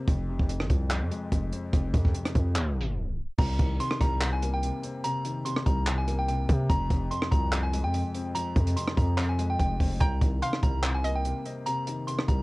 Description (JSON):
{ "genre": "hip hop, trap", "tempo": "145 BPM", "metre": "4/4", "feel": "half-time", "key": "C minor", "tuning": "A4 = 444 Hz", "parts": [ { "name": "dark concert grand piano", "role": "accompaniment", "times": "0.0-12.4 s", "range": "F2 to C4", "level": "-33 LUFS", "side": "left 2 dB", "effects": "low-pass filter" }, { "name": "distorted 808-style bass", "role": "bass", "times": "0.1-12.4 s", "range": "F1 to C3", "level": "-28 LUFS", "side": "equal", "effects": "distortion" }, { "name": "compact cocktail drum kit", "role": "drums", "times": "0.1-12.4 s", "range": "crash cymbal, handclaps, hi-hat, kick drum, rim click", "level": "-28 LUFS", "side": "equal", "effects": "cassette tape" }, { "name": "delicate synth tine bell", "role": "melody", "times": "3.4-12.4 s", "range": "G5 to C6", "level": "-33 LUFS", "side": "right 1 dB", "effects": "chorus, low-pass filter, cassette tape" }, { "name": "hollow square pluck", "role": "second line", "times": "10.0-11.6 s", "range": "Eb5 to G5", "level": "-35 LUFS", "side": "right 2 dB", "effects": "chorus, analog delay" } ], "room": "little or no reverb", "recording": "home recording on cassette, tape stop", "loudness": "-25 LUFS", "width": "side -22 dB against mid", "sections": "0.0-3.4 A section; 3.4-12.4 B section", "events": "tape stop 2.6-3.4", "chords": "0.1 Fm; 3.4 Cm7; 6.7 Fm; 10.0 Cm7" }